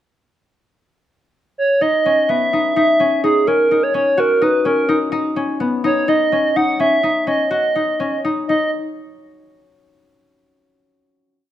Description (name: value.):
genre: contemporary instrumental, contemporary.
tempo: 252 BPM (eighths).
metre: 7/8.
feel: straight.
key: Eb phrygian.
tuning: A4 = 440 Hz.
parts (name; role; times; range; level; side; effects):
reedy FM lead; melody; 1.6-8.7 s; Ab4 to F#5; -16 LUFS; right 1 dB; chorus.
concert harp; arpeggios; 1.8-8.7 s; B3 to Gb4; -19 LUFS; left 3 dB; none.
room: light reverb.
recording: close, detailed microphones.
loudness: -14 LUFS.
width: side -11 dB against mid.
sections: 0.2-1.8 pickup bar; 1.8-8.5 A section; 8.5-10.2 final note.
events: none.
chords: 0.2 N.C.; 1.8 E5; 3.5 Ebm7; 8.5 N.C..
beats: | 0.16 0.40 0.64 0.87 1.10 1.34 1.58 | 1.82 2.06 2.29 2.53 2.77 3.00 3.24 | 3.47 3.71 3.94 4.18 4.41 4.65 4.88 | 5.12 5.36 5.60 5.83 6.07 6.31 6.55 | 6.79 7.03 7.27 7.51 7.75 8.00 8.24 | 8.48.